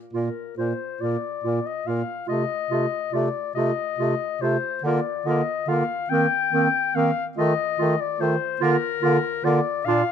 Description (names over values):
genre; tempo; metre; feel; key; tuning
classical, lyrical piece for single-reed quartet; 47 BPM (dotted quarters); 6/8; rubato; Bb major; A4 = 440 Hz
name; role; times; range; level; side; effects
warm clarinet; melody; 0.1-10.1 s; Bb4 to G5; -25 LUFS; left 9 dB; none
warm clarinet; second line; 0.1-10.0 s; C4 to F4; -28 LUFS; right 6 dB; none
clear tenor saxophone; accompaniment; 0.1-10.0 s; A3 to D4; -29 LUFS; left 3 dB; none
bright bass clarinet; bass; 0.1-10.0 s; Bb2 to Eb3; -26 LUFS; right 2 dB; none
room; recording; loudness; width
light reverb; none; -21 LUFS; side -8 dB against mid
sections
0.0-10.1 A section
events
none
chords
0.0 Bb5; 2.3 F7/C; 4.8 Bb/D; 6.1 Cm7/Eb; 7.4 F7/Eb; 8.6 Bb/D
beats
1.01 | 2.29 3.56 | 4.84 6.11 | 7.38 8.61 | 9.86